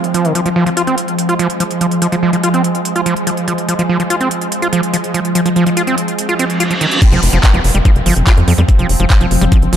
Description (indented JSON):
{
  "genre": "psychedelic trance",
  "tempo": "144 BPM",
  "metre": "4/4",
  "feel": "straight",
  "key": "F minor",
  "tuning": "A4 = 440 Hz",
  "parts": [
    { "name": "evolving wavetable pad", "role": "sustained chords", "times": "0.0-9.8 s", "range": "F3 to C4", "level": "-18 LUFS", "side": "right 1 dB", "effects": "ensemble chorus, built-in reverb, sidechain pumping" },
    { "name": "big-room dance drum kit", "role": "drums", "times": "0.0-9.8 s", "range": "crash cymbal, handclaps, hi-hat", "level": "-21 LUFS", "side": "right 2 dB", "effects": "none" },
    { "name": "overdriven acid bass", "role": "riff", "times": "0.1-9.8 s", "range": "Eb3 to F4", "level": "-16 LUFS", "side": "right 1 dB", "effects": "distortion, auto-pan, cassette tape, sidechain pumping, dub echo" },
    { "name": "reverse cymbal and downlifter", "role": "sound effects", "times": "6.4-9.8 s", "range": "none", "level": "-21 LUFS", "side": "right 1 dB", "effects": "none" },
    { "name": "electronic kick drum", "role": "drums", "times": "7.0-9.6 s", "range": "none", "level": "-10 LUFS", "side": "equal", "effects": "none" },
    { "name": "tight sequencer bass", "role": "bass", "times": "7.1-9.8 s", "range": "F1 to F2", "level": "-13 LUFS", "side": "equal", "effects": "none" }
  ],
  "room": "light reverb, digital ambience",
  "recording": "dark, warm production",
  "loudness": "-11 LUFS",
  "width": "side -10 dB against mid",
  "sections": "0.0-7.0 A section; 7.0-9.8 B section",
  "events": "filter sweep on acid bass 0.0-7.0; reverse cymbal 6.4-7.0; drop 7.0-9.8",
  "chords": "0.0 F5"
}